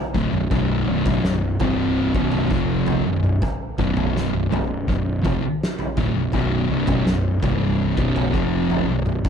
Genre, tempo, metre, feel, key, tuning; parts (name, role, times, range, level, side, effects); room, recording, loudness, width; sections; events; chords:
stoner and doom metal; 82 BPM; 4/4; straight; A4 = 440 Hz
thick fuzz guitar; riff; 0.1-9.2 s; B1 to E#3; -24 LUFS; left 10 dB; distortion
thick fuzz guitar; riff; 0.1-9.2 s; B1 to E#3; -23 LUFS; right 7 dB; distortion
fuzz fingered electric bass; bass; 0.1-9.2 s; B0 to E#1; -27 LUFS; equal; overdrive, tube saturation
oversized low-tuned drum kit; drums; 0.1-9.3 s; kick drum, snare drum, toms; -25 LUFS; equal
studio reverb; lossy compression artefacts; -18 LUFS; side -7 dB against mid
0.0-9.3 A section
0.0 B5